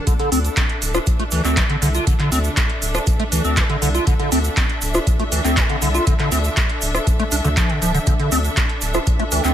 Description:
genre	acid house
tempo	120 BPM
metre	4/4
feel	straight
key	D minor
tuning	A4 = 437 Hz
part	liquid acid bass	riff	0.0-9.5 s	D3 to F4	-22 LUFS	equal	phaser, overdrive, analog chorus, sidechain pumping, digital delay
part	rich symphonic string section	texture	0.0-9.5 s	D4 to A5	-26 LUFS	equal	sidechain pumping
part	booming analog drum machine	drums	0.1-9.5 s	handclaps, hi-hat, rim click	-24 LUFS	right 1 dB	none
part	electronic kick drum	drums	0.1-9.2 s	none	-20 LUFS	equal	none
part	tube shaker	percussion	0.1-9.5 s	none	-29 LUFS	right 4 dB	none
part	saturated sub bass	bass	0.3-9.5 s	D1 to D2	-21 LUFS	equal	sidechain pumping
room	light reverb, digital ambience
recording	none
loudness	-16 LUFS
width	side -10 dB against mid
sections	0.0-9.5 A section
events	filter sweep on acid bass 0.0-9.5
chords	0.0 D5

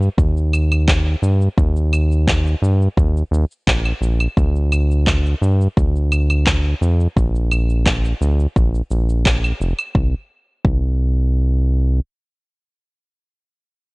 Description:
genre	sunset chillout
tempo	86 BPM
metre	4/4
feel	straight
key	unclear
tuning	A4 = 435 Hz
part	round analog bass	bass	0.0-12.0 s	F1 to G2	-16 LUFS	equal	none
part	electronic shaker, claves and handclaps	drums	0.0-9.9 s	none	-22 LUFS	equal	none
part	electronic kick drum	drums	0.2-10.9 s	none	-17 LUFS	equal	none
room	little or no reverb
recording	worn, warbling old tape, cassette tape, warbly pitch drift, nothing above 11.0 kHz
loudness	-15 LUFS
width	side -30 dB against mid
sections	0.0-9.9 A section; 9.9-12.7 B section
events	none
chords	none

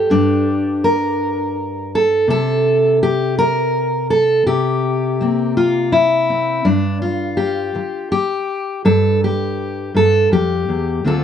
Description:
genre	folk, solo fingerstyle acoustic guitar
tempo	55 BPM (dotted quarters)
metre	6/8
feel	straight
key	unclear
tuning	A4 = 438 Hz
part	fingerpicked steel-string acoustic guitar	solo	0.0-11.2 s	D2 to Bb4	-14 LUFS	equal	none
room	moderate studio reverb, RT60 0.6 s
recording	nothing above 10.4 kHz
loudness	-15 LUFS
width	side -8 dB against mid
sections	0.0-6.7 A section; 6.7-11.2 B section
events	none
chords	0.0 N.C.; 2.3 C7; 6.7 G5

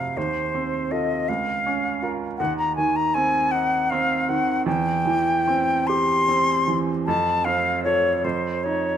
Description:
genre	classical, romantic duo for flute and grand piano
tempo	47-55 BPM (dotted quarters)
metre	6/8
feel	rubato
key	unclear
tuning	A4 = 443 Hz
part	silver concert flute	melody	0.0-9.0 s	C5 to C6	-22 LUFS	left 2 dB	none
part	clear baby grand piano	accompaniment	0.0-9.0 s	Db2 to Bb4	-24 LUFS	right 4 dB	none
room	moderate recital hall reverb, RT60 1.7 s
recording	close, detailed microphones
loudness	-20 LUFS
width	side -9 dB against mid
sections	0.0-9.0 A section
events	none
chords	0.2 F7/Eb; 1.3 Bbm/Db; 2.4 Ebm6; 4.7 C/E; 7.1 F; 8.2 F7(no3)

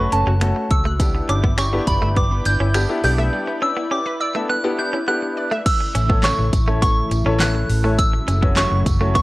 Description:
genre	dance-pop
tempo	103 BPM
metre	4/4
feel	straight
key	A major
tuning	A4 = 440 Hz
part	soft synth bell	melody	0.0-9.2 s	A5 to G6	-23 LUFS	right 1 dB	chorus, phaser, tape echo
part	clear baby grand piano	accompaniment	0.0-9.2 s	A3 to C#5	-25 LUFS	left 2 dB	sidechain pumping
part	lush unison pad	sustained chords	0.0-9.2 s	C#3 to G5	-29 LUFS	equal	chorus, sidechain pumping
part	wide unison pluck	arpeggios	0.0-5.6 s	G3 to F#6	-30 LUFS	left 1 dB	sidechain pumping, tape echo
part	vintage muted fingered electric bass	bass	0.0-9.2 s	F#1 to C#2	-20 LUFS	equal	sidechain pumping
part	direct-recorded clean electric guitar	riff	0.1-9.2 s	A3 to C#4	-28 LUFS	right 2 dB	wide subtle chorus
part	pop drum kit	drums	0.1-9.2 s	crash cymbal, finger snaps, handclaps, hi-hat, kick drum, snare drum	-20 LUFS	equal	overdrive
part	tambourine	percussion	1.0-9.2 s	none	-36 LUFS	right 3 dB	none
room	light reverb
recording	worn, warbling old tape, cassette tape, warbly pitch drift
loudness	-16 LUFS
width	side -19 dB against mid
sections	0.0-5.7 A section; 5.7-9.2 B section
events	break 3.3-5.7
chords	0.0 F#m; 1.0 Em7/G; 5.7 A; 8.0 F#m7

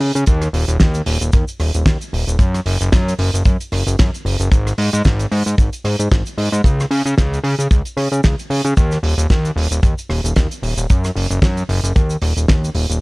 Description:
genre	nu-disco, nu disco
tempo	113 BPM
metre	4/4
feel	swing 56% on 16ths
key	unclear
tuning	A4 = 440 Hz
part	fat analog bass	bass	0.0-13.0 s	D#1 to C#3	-17 LUFS	equal	sidechain pumping
part	damped 70s drum kit	drums	0.0-13.0 s	cabasa, hi-hat, rim click, snare drum	-22 LUFS	right 1 dB	none
part	kick drum	drums	0.3-12.6 s	none	-14 LUFS	equal	none
room	little or no reverb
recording	dry, gritty hardware recording, cassette tape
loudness	-14 LUFS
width	side -27 dB against mid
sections	0.0-13.0 A section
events	drop 0.0-13.0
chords	none

